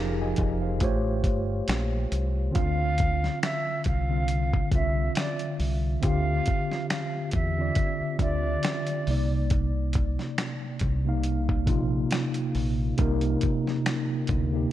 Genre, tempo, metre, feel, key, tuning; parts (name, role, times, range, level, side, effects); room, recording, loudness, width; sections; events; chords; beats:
lo-fi hip hop; 69 BPM; 4/4; swing 55% on 16ths; D phrygian; A4 = 440 Hz
mellow tine electric piano; accompaniment; 0.0-14.7 s; C3 to Ab5; -28 LUFS; equal; medium stereo tremolo, cassette tape, low-pass filter
deep dub fingered electric bass; bass; 0.0-14.7 s; F1 to E2; -28 LUFS; equal
dusty soul sampler-style drum kit; drums; 0.4-14.5 s; finger snaps, hi-hat, kick drum, snare drum; -28 LUFS; equal
breathy silver concert flute; melody; 2.6-9.5 s; D5 to F5; -32 LUFS; right 2 dB; low-pass filter
light reverb; -24 LUFS; side -13 dB against mid
0.0-2.6 A section; 2.6-14.7 B section
0.0 Fm11; 0.8 A7alt; 2.6 Dm9; 9.1 Cm9
0.81 1.68 | 2.55 3.42 4.29 5.16 | 6.03 6.90 7.77 8.64 | 9.51 10.38 11.25 12.12 | 12.99 13.86